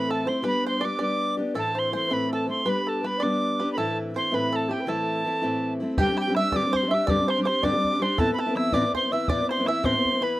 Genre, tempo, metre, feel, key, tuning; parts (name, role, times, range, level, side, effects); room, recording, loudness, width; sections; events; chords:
celtic folk, Celtic jig; 108 BPM (dotted quarters); 6/8; straight; A minor; A4 = 440 Hz
bright wooden whistle; melody; 0.0-10.4 s; G5 to E6; -26 LUFS; right 2 dB
bluegrass banjo; second line; 0.0-10.4 s; G4 to E5; -32 LUFS; right 3 dB
wooden flute; second line; 0.0-10.4 s; G4 to E5; -30 LUFS; left 2 dB
picked steel-string acoustic guitar; accompaniment; 0.0-10.4 s; G2 to G4; -26 LUFS; left 1 dB
bodhran; percussion; 6.0-10.3 s; -30 LUFS; equal
light reverb; rough home demo mix; -22 LUFS; side -16 dB against mid
0.0-6.0 A section; 6.0-10.4 B section
0.4 G; 1.5 Am; 2.7 G; 3.8 Am; 6.0 Gsus4; 8.2 Amadd9